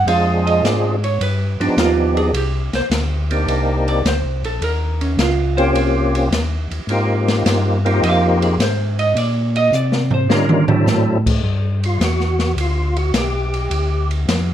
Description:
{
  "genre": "soul jazz organ trio",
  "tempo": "106 BPM",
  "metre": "4/4",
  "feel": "swing 69% on 8ths",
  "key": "Eb major, G major from 11.4 s",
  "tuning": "A4 = 442 Hz",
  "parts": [
    { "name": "vintage hollow-body jazz guitar", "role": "accompaniment", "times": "0.0-10.8 s", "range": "Db4 to F5", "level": "-20 LUFS", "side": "right 3 dB", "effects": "none" },
    { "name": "mellow tonewheel organ", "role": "bass", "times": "0.0-14.5 s", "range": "Bb1 to D3", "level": "-19 LUFS", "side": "left 1 dB", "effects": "slow rotary speaker" },
    { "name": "percussive tonewheel organ", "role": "melody", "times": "0.1-14.1 s", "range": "F3 to Bb4", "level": "-19 LUFS", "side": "equal", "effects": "slow rotary speaker, overdrive, chorus vibrato" },
    { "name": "open jazz drum kit", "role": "drums", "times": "0.1-14.5 s", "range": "crash cymbal, hi-hat, kick drum, ride cymbal, snare drum, toms", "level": "-22 LUFS", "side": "equal", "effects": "none" }
  ],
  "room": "light reverb",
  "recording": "minimal, uncompressed stereo recording",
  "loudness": "-15 LUFS",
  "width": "side -10 dB against mid",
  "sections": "0.0-11.4 A section; 11.4-14.5 A section",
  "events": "hollow-body jazz guitar solo 0.0-11.4; drum fill 9.7-10.9; tonewheel organ solo 11.4-14.5",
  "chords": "0.1 Dm7b5; 1.2 G7b13; 2.3 Cm9; 4.6 Eb13; 6.9 Abmaj13; 9.2 Bbsus2; 10.3 D7; 11.4 Gmaj7; 13.7 Dm",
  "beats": "| 0.07 0.64 1.21 1.78 | 2.35 2.92 3.48 4.05 | 4.62 5.19 5.76 6.32 | 6.89 7.46 8.03 8.60 | 9.16 9.73 10.30 10.87 | 11.43 12.00 12.57 13.14 | 13.71 14.28"
}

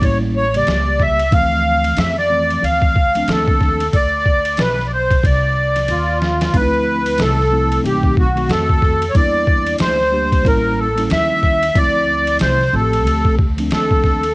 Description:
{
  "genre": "hip hop, jazz-hop",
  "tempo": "92 BPM",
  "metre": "4/4",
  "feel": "swing 60% on 16ths",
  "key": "unclear",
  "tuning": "A4 = 439 Hz",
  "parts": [
    { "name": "accordion", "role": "melody", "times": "0.0-14.3 s", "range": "F4 to F5", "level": "-16 LUFS", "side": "equal", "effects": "light tremolo tuning, cassette tape" },
    { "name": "mellow tine electric piano", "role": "accompaniment", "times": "0.0-14.3 s", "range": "C#3 to G4", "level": "-22 LUFS", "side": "equal", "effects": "medium stereo tremolo" },
    { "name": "upright bass", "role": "bass", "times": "0.0-14.3 s", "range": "A1 to F2", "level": "-21 LUFS", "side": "equal", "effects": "none" },
    { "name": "trip hop sampler-style drum kit", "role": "drums", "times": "0.0-14.3 s", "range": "hi-hat, kick drum, ride cymbal, snare drum", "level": "-18 LUFS", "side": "equal", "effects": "cassette tape" }
  ],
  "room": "digital ambience",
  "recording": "home recording on cassette",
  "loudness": "-13 LUFS",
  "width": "side -24 dB against mid",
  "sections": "0.0-6.5 A section; 6.5-14.3 A section",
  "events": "drum fill 5.9-6.5",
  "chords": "0.0 A7b9; 1.3 Dm7; 7.8 B7b9; 9.1 Em7b5; 10.5 A7b9; 11.8 Dm7",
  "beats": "0.02 0.67 | 1.32 1.97 2.62 3.28 | 3.93 4.58 5.23 5.89 | 6.54 7.19 7.84 8.49 | 9.15 9.80 10.45 11.10 | 11.76 12.41 13.06 13.71"
}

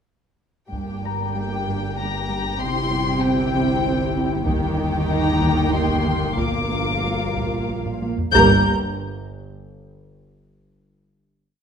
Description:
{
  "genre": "cinematic, suspense film score",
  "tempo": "95 BPM",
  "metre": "3/4",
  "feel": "straight",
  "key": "G minor",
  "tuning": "A4 = 440 Hz",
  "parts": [
    { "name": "dark chamber violin section", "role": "second line", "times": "0.7-8.7 s", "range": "G4 to Bb5", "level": "-26 LUFS", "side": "left 2 dB", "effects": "none" },
    { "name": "dark symphonic viola section", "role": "accompaniment", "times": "0.7-8.7 s", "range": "Bb3 to G4", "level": "-26 LUFS", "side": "right 1 dB", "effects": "none" },
    { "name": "dark studio cello section", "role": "riff", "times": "0.7-8.2 s", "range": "G2 to Eb4", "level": "-29 LUFS", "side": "equal", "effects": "none" },
    { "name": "dark studio cello section", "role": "bass", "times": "0.7-8.7 s", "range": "G2 to Eb3", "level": "-27 LUFS", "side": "right 3 dB", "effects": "none" },
    { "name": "rich symphonic double bass section", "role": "bass", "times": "0.7-8.7 s", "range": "G1 to Eb2", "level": "-28 LUFS", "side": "right 3 dB", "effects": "none" },
    { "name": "analog drone", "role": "drone", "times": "1.5-8.7 s", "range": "G1", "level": "-29 LUFS", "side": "left 1 dB", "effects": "chorus" },
    { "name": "taiko ensemble", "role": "drums", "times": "0.7-9.6 s", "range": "none", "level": "-29 LUFS", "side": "equal", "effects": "none" },
    { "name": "Celtic harp", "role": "texture", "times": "1.1-2.9, 6.4-8.4 s", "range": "Bb5 to C6", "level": "-34 LUFS", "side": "left 7 dB", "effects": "none" },
    { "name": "dark chamber violin section", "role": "melody", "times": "1.3-8.7 s", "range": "G5 to G6", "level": "-25 LUFS", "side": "left 7 dB", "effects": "none" }
  ],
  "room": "wet scoring stage reverb, RT60 1.4 s",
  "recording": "none",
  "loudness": "-19 LUFS",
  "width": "side -7 dB against mid",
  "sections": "0.7-8.3 A section; 8.3-10.2 final chord",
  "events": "drum fill 7.9-8.3",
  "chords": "0.7 Gm; 2.6 C/G; 4.5 Eb/G; 6.4 Bb; 8.3 Gm",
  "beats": "| 0.72 1.36 1.98 | 2.60 3.23 3.85 | 4.47 5.09 5.73 | 6.38 7.04 7.70 | 8.35 8.98"
}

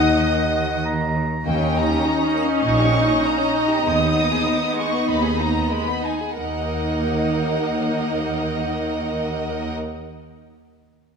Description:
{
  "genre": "quick classical-period movement for symphony orchestra",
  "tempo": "90-102 BPM",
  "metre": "4/4",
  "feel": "straight",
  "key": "Eb minor",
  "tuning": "A4 = 442 Hz",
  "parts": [
    { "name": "rich chamber violin section", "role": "melody", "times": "0.0-9.8 s", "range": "Gb5 to Eb6", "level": "-28 LUFS", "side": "left 3 dB", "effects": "none" },
    { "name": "clear chamber violin section", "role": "second line", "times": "0.0-9.8 s", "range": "Ab3 to Eb5", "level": "-25 LUFS", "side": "left 2 dB", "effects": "none" },
    { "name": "clear oboe", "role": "second line", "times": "0.0-1.4 s", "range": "Gb5 to Bb5", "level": "-28 LUFS", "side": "right 1 dB", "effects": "none" },
    { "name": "dark clarinet", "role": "second line", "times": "0.0-1.1 s", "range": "Gb5", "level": "-32 LUFS", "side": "left 4 dB", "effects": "none" },
    { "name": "flute section", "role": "second line", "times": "0.0-0.8 s", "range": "Eb5", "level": "-30 LUFS", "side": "right 3 dB", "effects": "none" },
    { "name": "rich chamber viola section", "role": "accompaniment", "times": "0.0-9.8 s", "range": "Bb3 to Eb4", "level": "-23 LUFS", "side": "right 1 dB", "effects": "none" },
    { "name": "warm French horn section", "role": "sustained chords", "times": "0.0-0.8 s", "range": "Eb4", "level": "-25 LUFS", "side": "left 7 dB", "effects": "none" },
    { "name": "clear chamber double bass section", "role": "bass", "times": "0.0-9.8 s", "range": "Bb1 to Eb2", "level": "-28 LUFS", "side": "right 2 dB", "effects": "none" },
    { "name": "rich studio cello section", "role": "bass", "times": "0.0-9.8 s", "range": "Eb2 to Eb3", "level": "-27 LUFS", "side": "right 2 dB", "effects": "none" }
  ],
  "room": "moderate scoring stage reverb, RT60 2.0 s",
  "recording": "none",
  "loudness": "-19 LUFS",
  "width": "side -6 dB against mid",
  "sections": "0.0-1.5 A section; 1.5-6.4 B section; 6.4-9.0 C section",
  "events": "slowing down 0.3-6.4",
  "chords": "0.0 Ebm; 1.5 Eb7; 3.9 Abm/Eb; 6.4 Ebm",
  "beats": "0.25 0.85 | 1.46 2.05 2.64 3.24 | 3.86 4.47 5.09 5.72 | 6.38 7.04 7.69 8.34"
}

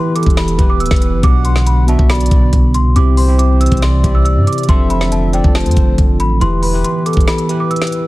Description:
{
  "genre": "hip hop, trap",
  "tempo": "139 BPM",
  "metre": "4/4",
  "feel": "half-time",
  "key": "E minor",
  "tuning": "A4 = 439 Hz",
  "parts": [
    { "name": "worn celesta", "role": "melody", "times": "0.0-8.1 s", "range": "G5 to E6", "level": "-22 LUFS", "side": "equal", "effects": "none" },
    { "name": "breathy flute-like synth lead", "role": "second line", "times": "0.0-8.1 s", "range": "A4 to F#5", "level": "-25 LUFS", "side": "left 2 dB", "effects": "chorus, tape echo" },
    { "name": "bell-like tine electric piano", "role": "accompaniment", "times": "0.0-8.1 s", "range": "B2 to B4", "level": "-18 LUFS", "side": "right 1 dB", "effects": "medium stereo tremolo" },
    { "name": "dark analog pad", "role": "sustained chords", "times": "0.0-8.1 s", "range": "D3 to G4", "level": "-24 LUFS", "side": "right 1 dB", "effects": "chorus" },
    { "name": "trap drum kit", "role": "drums", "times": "0.2-8.0 s", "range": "hi-hat, kick drum, snare drum", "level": "-14 LUFS", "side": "equal", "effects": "none" },
    { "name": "long sustained 808-style bass", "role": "bass", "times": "0.3-7.3 s", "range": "D1 to G2", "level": "-14 LUFS", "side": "equal", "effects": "none" }
  ],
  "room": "little or no reverb",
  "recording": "dense, heavily limited modern master, vinyl crackle",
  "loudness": "-10 LUFS",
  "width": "side -18 dB against mid",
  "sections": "0.0-8.1 A section",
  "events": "kick muted 7.3-8.1",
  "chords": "0.0 Em; 1.2 Bm; 3.0 C; 4.7 F6; 6.4 Em",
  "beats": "0.37 0.80 | 1.23 1.67 2.10 2.53 | 2.96 3.39 3.82 4.25 | 4.69 5.12 5.55 5.98 | 6.41 6.84 7.28 7.71"
}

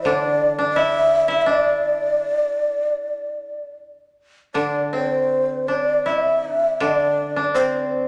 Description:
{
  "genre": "japanese traditional, Japanese chamber music",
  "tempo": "72-86 BPM",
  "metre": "4/4",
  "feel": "rubato",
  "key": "unclear",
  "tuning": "A4 = 439 Hz",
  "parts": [
    { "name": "breathy mellow long shakuhachi", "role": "melody", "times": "0.0-8.1 s", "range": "C5 to E5", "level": "-22 LUFS", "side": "equal", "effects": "none" },
    { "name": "koto", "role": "second line", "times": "0.0-8.1 s", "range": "C4 to E4", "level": "-25 LUFS", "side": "equal", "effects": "none" },
    { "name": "koto", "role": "accompaniment", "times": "0.0-8.1 s", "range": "D3 to E3", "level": "-31 LUFS", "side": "equal", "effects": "none" }
  ],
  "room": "wet recital hall reverb, RT60 1.7 s",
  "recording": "none",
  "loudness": "-20 LUFS",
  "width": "mono",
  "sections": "0.0-4.6 A section; 4.6-8.1 B section",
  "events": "none",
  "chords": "none",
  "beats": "0.06 0.77 | 1.48 2.22 2.98 3.77 | 4.57 5.32 6.07 6.82 | 7.56"
}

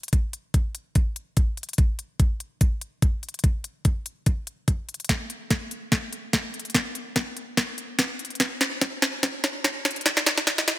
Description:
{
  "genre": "future bass",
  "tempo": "145 BPM",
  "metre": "4/4",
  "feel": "swing 54% on 16ths, half-time",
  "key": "none",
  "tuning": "none",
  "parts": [
    { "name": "trap drum kit", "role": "drums", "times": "0.0-10.8 s", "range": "hi-hat, snare drum", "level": "-24 LUFS", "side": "equal", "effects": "none" },
    { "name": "electronic kick drum", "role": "drums", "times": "0.1-10.6 s", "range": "none", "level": "-22 LUFS", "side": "equal", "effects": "none" }
  ],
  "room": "light reverb, digital ambience",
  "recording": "high-pass filter",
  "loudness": "-23 LUFS",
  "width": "side -16 dB against mid",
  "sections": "0.0-10.8 A section",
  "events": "build-up 0.0-10.8; filter sweep 0.0-10.8; drum fill 5.1-10.8",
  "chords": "none",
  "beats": "| 0.13 0.54 0.95 1.37 | 1.78 2.20 2.61 3.02 | 3.44 3.85 4.27 4.68 | 5.09 5.51 5.92 6.33 | 6.75 7.16 7.58 7.99 | 8.40 8.82 9.23 9.64 | 10.06 10.47"
}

